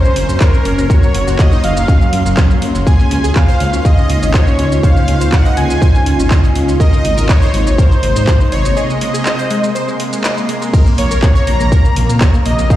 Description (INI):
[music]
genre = progressive house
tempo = 122 BPM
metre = 4/4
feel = straight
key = unclear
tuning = A4 = 441 Hz
[part]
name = soft supersaw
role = melody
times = 0.0-12.8 s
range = Bb4 to Bb5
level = -19 LUFS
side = equal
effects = tape echo
[part]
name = shimmering ambient pad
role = sustained chords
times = 0.0-12.8 s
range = C3 to F4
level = -21 LUFS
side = equal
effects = chorus, built-in reverb, sidechain pumping
[part]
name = wide unison pluck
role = arpeggios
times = 0.0-12.8 s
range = Gb3 to Eb5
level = -21 LUFS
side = equal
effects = phaser, sidechain pumping, dub echo
[part]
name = pop drum kit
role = drums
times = 0.0-12.8 s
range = crash cymbal, handclaps, hi-hat, shaker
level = -23 LUFS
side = equal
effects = none
[part]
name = twinkling granular texture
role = texture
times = 0.0-12.8 s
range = Bb5 to C6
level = -32 LUFS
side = equal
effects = built-in reverb, sidechain pumping
[part]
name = dark detuned saw bass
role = bass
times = 0.2-12.7 s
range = Gb1 to Bb2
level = -15 LUFS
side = equal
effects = sidechain pumping
[part]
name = electronic kick drum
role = drums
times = 0.4-12.8 s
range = none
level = -10 LUFS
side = equal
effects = none
[sound]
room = light reverb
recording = played on a big sound system in a bare room, large studio reverb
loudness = -10 LUFS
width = side -13 dB against mid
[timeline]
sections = 0.0-12.8 A section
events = break 8.8-10.7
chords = 0.0 Gb; 2.9 Db6; 6.8 Abadd9; 10.7 Bbmadd9